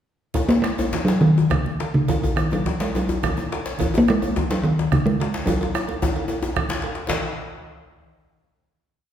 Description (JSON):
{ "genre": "west african traditional, West African drum ensemble", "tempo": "137-157 BPM (dotted quarters)", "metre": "12/8", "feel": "straight", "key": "F# major pentatonic", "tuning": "A4 = 443 Hz", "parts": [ { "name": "bombo", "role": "percussion", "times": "0.3-7.2 s", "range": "none", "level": "-28 LUFS", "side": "right 1 dB", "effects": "none" }, { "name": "congas", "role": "percussion", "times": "0.3-7.2 s", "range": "none", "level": "-32 LUFS", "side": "right 3 dB", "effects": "none" }, { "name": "cowbell", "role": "percussion", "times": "0.3-7.2 s", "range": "none", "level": "-33 LUFS", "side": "right 4 dB", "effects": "none" }, { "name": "djembe", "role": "percussion", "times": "0.3-7.2 s", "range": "none", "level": "-31 LUFS", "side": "left 4 dB", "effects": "none" }, { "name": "djembe", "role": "percussion", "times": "0.4-7.2 s", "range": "none", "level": "-27 LUFS", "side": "left 2 dB", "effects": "none" }, { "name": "talking drum", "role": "melody", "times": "0.5-6.8 s", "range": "C#3 to A#3", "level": "-20 LUFS", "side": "equal", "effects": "none" } ], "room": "wet recital hall reverb, RT60 1.5 s", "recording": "recorded in a church or concert hall", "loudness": "-19 LUFS", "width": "side -10 dB against mid", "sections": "0.3-7.1 A section; 7.1-8.7 final hit", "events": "speeding up 0.3-8.7; drum fill 5.5-7.1", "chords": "none" }